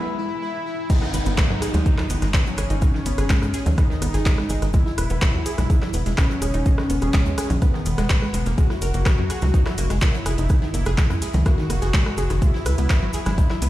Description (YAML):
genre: melodic techno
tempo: 125 BPM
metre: 4/4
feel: straight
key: G# minor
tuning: A4 = 440 Hz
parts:
  - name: fat analog lead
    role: melody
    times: 0.0-13.7 s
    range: B3 to F#4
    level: -29 LUFS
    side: left 1 dB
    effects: lush chorus, sidechain pumping, ping-pong delay
  - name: wide unison pluck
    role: arpeggios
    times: 0.9-13.7 s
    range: D#3 to B4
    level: -29 LUFS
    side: equal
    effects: sidechain pumping, digital delay
  - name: deep house drum kit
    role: drums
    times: 0.9-13.7 s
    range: congas, crash cymbal, handclaps, hi-hat, rim click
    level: -29 LUFS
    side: right 1 dB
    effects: none
  - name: electronic kick drum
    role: drums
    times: 0.9-13.5 s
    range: none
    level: -19 LUFS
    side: equal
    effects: none
  - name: open jazz drum kit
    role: drums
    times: 0.9-13.7 s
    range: hi-hat, shaker, snare drum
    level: -41 LUFS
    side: left 1 dB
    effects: none
  - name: cabasa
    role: percussion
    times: 0.9-13.7 s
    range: none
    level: -41 LUFS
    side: left 6 dB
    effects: none
  - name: downlifter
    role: sound effects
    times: 0.9-4.7 s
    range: none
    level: -33 LUFS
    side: right 1 dB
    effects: none
  - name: tight sequencer bass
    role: bass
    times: 1.1-13.7 s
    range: E1 to G#2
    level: -22 LUFS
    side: equal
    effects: sidechain pumping
room: light reverb, studio reverb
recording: played on a big sound system in a bare room, stone room reverb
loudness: -18 LUFS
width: side -15 dB against mid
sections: 0.9-13.7 A section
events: break 0.0-0.9; drop 0.9-13.7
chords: 0.0 N.C.; 0.9 G#5; 4.7 E; 8.6 F#add9; 12.4 C#m